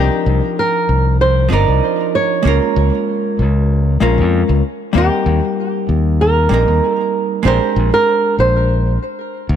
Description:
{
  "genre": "sunset chillout",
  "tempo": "96 BPM",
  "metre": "4/4",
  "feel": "swing 54% on 16ths",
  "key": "C minor",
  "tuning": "A4 = 440 Hz",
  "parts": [
    { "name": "flamenco guitar", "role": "melody", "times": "0.0-9.6 s", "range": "G4 to D5", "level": "-18 LUFS", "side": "right 1 dB", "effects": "digital delay" },
    { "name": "vintage hollow-body jazz guitar", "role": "accompaniment", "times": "0.0-9.0 s", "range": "F3 to Bb4", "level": "-18 LUFS", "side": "moving between left 7 dB and right 8 dB", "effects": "auto-pan, tape echo" },
    { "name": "modern bright fingered electric bass", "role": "bass", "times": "0.0-9.6 s", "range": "G1 to F2", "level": "-14 LUFS", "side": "left 1 dB", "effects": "none" }
  ],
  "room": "light reverb, small room ambience",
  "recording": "none",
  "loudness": "-12 LUFS",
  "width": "side -9 dB against mid",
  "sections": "0.0-9.6 A section",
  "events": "none",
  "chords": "0.0 Cm11; 2.5 Db6; 4.6 Eb6; 7.5 Bb13",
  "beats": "0.58 1.20 1.83 | 2.45 3.08 3.70 4.33 | 4.95 5.58 6.20 6.83 | 7.45 8.08 8.70 9.33"
}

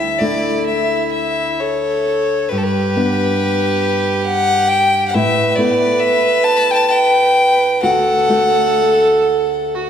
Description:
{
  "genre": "celtic folk, Celtic slow air",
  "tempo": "58-70 BPM",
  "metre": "3/4",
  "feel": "rubato",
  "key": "unclear",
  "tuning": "A4 = 440 Hz",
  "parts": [
    { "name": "clear fiddle", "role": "melody", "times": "0.0-9.7 s", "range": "A4 to B5", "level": "-16 LUFS", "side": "left 3 dB", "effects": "none" },
    { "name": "clear viola", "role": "second line", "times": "0.0-9.9 s", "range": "E4 to B4", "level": "-18 LUFS", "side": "right 4 dB", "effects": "none" },
    { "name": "nylon-string guitar", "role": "accompaniment", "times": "0.0-9.9 s", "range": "D2 to F#4", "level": "-20 LUFS", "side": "left 1 dB", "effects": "none" }
  ],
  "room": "wet concert hall reverb, RT60 2.3 s",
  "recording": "recorded in a church or concert hall",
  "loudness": "-13 LUFS",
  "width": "side -8 dB against mid",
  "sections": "0.0-9.9 A section",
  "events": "none",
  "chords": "0.0 Dsus2; 2.5 G; 5.1 Asus2; 7.8 D",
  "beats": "0.67 1.60 | 2.52 3.40 4.28 | 5.15 6.01 6.90 | 7.82 8.76 9.76"
}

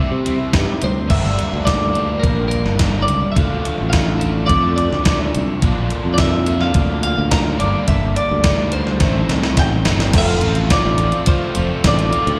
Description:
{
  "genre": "indie rock",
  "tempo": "106 BPM",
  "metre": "4/4",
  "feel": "straight",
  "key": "unclear",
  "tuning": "A4 = 440 Hz",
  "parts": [
    { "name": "twelve-string electric guitar", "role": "melody", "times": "0.0-12.4 s", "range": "Bb4 to Bb5", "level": "-24 LUFS", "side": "equal", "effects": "subtle chorus, slapback echo, digital delay" },
    { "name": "crunchy overdriven guitar", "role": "riff", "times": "0.0-12.4 s", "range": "G2 to F4", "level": "-28 LUFS", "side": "equal", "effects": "slapback echo" },
    { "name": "crunchy overdriven guitar", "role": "riff", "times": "0.0-12.4 s", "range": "G2 to F4", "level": "-28 LUFS", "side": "equal", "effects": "analog chorus, slapback echo" },
    { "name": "modern bright fingered electric bass", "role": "bass", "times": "0.0-12.4 s", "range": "F1 to C3", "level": "-22 LUFS", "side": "equal", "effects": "none" },
    { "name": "gated 80s digital drum machine", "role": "drums", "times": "0.3-12.4 s", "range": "crash cymbal, hi-hat, kick drum, snare drum", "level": "-20 LUFS", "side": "equal", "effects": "gated reverb, gated reverb snare" },
    { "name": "chorused pulse-width pad", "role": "sustained chords", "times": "10.1-12.4 s", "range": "F4 to A5", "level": "-33 LUFS", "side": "equal", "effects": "none" },
    { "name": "delicate synth tine bell", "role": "second line", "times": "10.2-12.4 s", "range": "A4", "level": "-29 LUFS", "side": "equal", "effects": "chorus, slapback echo" }
  ],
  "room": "little or no reverb",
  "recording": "live gig heard through the venue's PA, recital hall reverb",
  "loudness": "-17 LUFS",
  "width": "mono",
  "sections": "0.0-1.1 A section; 1.1-10.2 B section; 10.2-12.4 C section",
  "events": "drum fill 9.0-10.2",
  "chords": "0.0 C; 1.1 Gm; 3.4 Dm; 5.6 Bb; 7.6 Gm; 9.0 Am7; 10.2 F",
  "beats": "0.54 | 1.10 1.67 2.24 2.80 | 3.37 3.94 4.50 5.07 | 5.64 6.20 6.77 7.33 | 7.90 8.46 9.03 9.59 | 10.15 10.71 11.28 11.84"
}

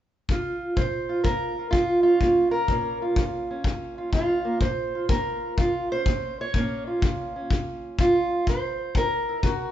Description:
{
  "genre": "acoustic country blues, solo or duo",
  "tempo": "125 BPM",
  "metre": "4/4",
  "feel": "swing 67% on 8ths",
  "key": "Bb minor",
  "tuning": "A4 = 440 Hz",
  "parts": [
    { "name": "fingerpicked steel-string acoustic guitar", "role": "melody", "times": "0.3-9.7 s", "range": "F2 to Db5", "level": "-24 LUFS", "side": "right 1 dB", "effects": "none" },
    { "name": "kick drum", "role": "drums", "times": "0.3-9.6 s", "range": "none", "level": "-26 LUFS", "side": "left 1 dB", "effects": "none" }
  ],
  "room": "moderate large studio reverb, RT60 1.3 s",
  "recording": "band playing live in one room, nothing above 7.8 kHz",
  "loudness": "-22 LUFS",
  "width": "side -11 dB against mid",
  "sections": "0.8-9.7 A section",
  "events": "none",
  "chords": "0.0 N.C.; 0.8 Bbm; 8.5 Gb",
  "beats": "0.28 | 0.76 1.24 1.72 2.20 | 2.69 3.17 3.65 4.13 | 4.61 5.09 5.57 6.06 | 6.54 7.02 7.50 7.98 | 8.46 8.95 9.43"
}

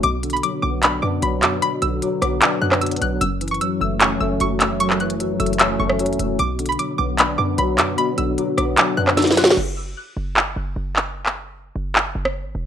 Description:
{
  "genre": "hip hop, trap",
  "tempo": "151 BPM",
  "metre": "4/4",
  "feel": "half-time",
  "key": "unclear",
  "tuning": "A4 = 441 Hz",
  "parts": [
    { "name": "string-like resonator pluck", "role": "melody", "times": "0.0-9.6 s", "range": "B5 to F#6", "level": "-23 LUFS", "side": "equal", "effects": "chorus, low-pass filter, tape echo" },
    { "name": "tine electric piano", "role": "accompaniment", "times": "0.0-9.6 s", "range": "F#2 to D4", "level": "-22 LUFS", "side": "left 2 dB", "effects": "ensemble chorus, low-pass filter" },
    { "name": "short 808-style bass", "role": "bass", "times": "0.0-12.7 s", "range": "E1 to F#2", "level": "-26 LUFS", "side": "right 1 dB", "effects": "none" },
    { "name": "trap drum kit", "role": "drums", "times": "0.0-12.3 s", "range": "crash cymbal, handclaps, hi-hat, rim click, snare drum", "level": "-18 LUFS", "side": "equal", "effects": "vintage 12-bit sampler grit" }
  ],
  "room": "light reverb, digital ambience",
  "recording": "rough home demo mix",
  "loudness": "-17 LUFS",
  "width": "side -9 dB against mid",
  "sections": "0.0-9.6 A section; 9.6-12.7 B section",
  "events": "drum fill 9.2-9.6; break 9.6-12.7",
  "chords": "0.0 Bm; 3.2 F#m7; 6.4 Bm; 9.6 N.C.",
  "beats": "| 0.03 0.43 0.83 1.23 | 1.62 2.02 2.42 2.81 | 3.21 3.61 4.01 4.41 | 4.80 5.20 5.60 5.99 | 6.39 6.79 7.19 7.58 | 7.98 8.38 8.78 9.17 | 9.57 9.97 10.37 10.76 | 11.16 11.56 11.95 12.35"
}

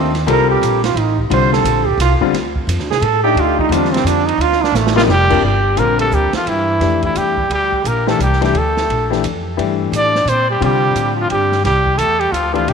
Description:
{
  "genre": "modal jazz",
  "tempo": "174 BPM",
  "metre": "3/4",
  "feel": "swing 63% on 8ths",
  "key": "G dorian from 5.4 s",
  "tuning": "A4 = 440 Hz",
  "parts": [
    { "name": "brilliant trombone", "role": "second line", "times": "0.0-12.7 s", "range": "E3 to C5", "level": "-19 LUFS", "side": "right 8 dB", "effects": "none" },
    { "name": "clear baby grand piano", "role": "accompaniment", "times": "0.0-12.7 s", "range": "C3 to A4", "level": "-19 LUFS", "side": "left 11 dB", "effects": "none" },
    { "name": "upright bass", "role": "bass", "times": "0.0-12.7 s", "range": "F1 to C3", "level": "-19 LUFS", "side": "equal", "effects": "none" },
    { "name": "open jazz drum kit", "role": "drums", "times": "0.1-12.7 s", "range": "crash cymbal, hi-hat, kick drum, ride cymbal, snare drum", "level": "-25 LUFS", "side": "right 5 dB", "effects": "none" },
    { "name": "breathy trumpet", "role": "melody", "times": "5.0-12.7 s", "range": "E4 to D5", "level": "-16 LUFS", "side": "equal", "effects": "tape echo" }
  ],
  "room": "moderate echo chamber reverb, RT60 2.2 s",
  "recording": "1960s-style stereo with parts hard left and right",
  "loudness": "-13 LUFS",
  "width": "side -6 dB against mid",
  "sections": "0.0-5.4 A section; 5.4-12.7 B section",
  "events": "trombone solo 0.0-5.4; drum fill 4.7-5.1",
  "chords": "0.0 Cm7; 1.3 Dm7; 5.4 Gm69",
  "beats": "| 0.27 0.61 0.96 | 1.30 1.65 1.99 | 2.33 2.68 3.02 | 3.36 3.71 4.05 | 4.40 4.74 5.08 | 5.43 5.78 6.12 | 6.46 6.81 7.16 | 7.50 7.85 8.19 | 8.54 8.88 9.23 | 9.57 9.92 10.26 | 10.61 10.95 11.30 | 11.64 11.99 12.33 | 12.68"
}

